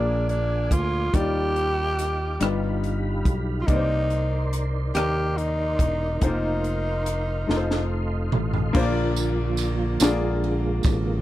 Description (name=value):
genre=slow gospel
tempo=47 BPM (dotted quarters)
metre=6/8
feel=straight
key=Bb major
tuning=A4 = 439 Hz
part: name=growling tenor saxophone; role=melody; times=0.0-8.3 s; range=D4 to G4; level=-27 LUFS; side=equal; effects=none
part: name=warm grand piano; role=accompaniment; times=0.0-11.2 s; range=G2 to D5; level=-28 LUFS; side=left 3 dB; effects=none
part: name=tonewheel organ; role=sustained chords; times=0.0-11.2 s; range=D3 to D6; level=-32 LUFS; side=right 3 dB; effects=slow rotary speaker, chorus vibrato
part: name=fingered electric bass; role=bass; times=0.0-11.2 s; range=E1 to Eb2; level=-26 LUFS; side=equal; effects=none
part: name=crisp fusion drum kit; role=drums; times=0.3-11.1 s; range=crash cymbal, hi-hat, kick drum, ride cymbal, rim click, snare drum, toms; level=-25 LUFS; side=equal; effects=none
part: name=tambourine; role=percussion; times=9.2-11.2 s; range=none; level=-31 LUFS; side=right 10 dB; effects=none
room=little or no reverb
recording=none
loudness=-21 LUFS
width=side -15 dB against mid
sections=0.0-8.8 A section; 8.8-11.2 B section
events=drum fill 7.5-8.8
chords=0.0 Bb7; 1.1 Ebmaj9; 2.4 G7b13; 3.7 Cm9; 6.2 F7sus4; 7.5 F7; 8.8 Bb; 10.0 Bb7